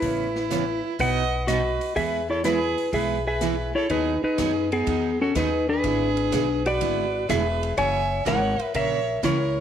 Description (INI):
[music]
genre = country, western swing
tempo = 124 BPM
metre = 4/4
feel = swing 69% on 8ths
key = E major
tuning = A4 = 444 Hz
[part]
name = clean lap steel guitar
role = melody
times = 0.0-9.6 s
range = B3 to G#5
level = -24 LUFS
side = left 2 dB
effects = none
[part]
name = clear fiddle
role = second line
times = 0.0-9.6 s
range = D#4 to E5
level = -31 LUFS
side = right 11 dB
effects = none
[part]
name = picked steel-string acoustic guitar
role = accompaniment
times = 0.0-9.4 s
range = B2 to G#4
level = -30 LUFS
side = right 11 dB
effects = none
[part]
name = upright bass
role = bass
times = 0.0-9.6 s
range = E1 to F#2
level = -30 LUFS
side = left 1 dB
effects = none
[part]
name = swinging big-band drum kit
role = drums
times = 0.0-9.4 s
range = hi-hat, kick drum, ride cymbal, snare drum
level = -36 LUFS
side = left 2 dB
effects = none
[sound]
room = moderate plate reverb, RT60 1.2 s, small room ambience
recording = 1960s-style stereo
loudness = -21 LUFS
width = side -9 dB against mid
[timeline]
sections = 0.0-3.9 A section; 3.9-9.6 B section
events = none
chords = 0.0 Aadd9; 1.0 B; 2.0 E; 3.9 G#m7; 5.8 E7/G#; 7.8 F#7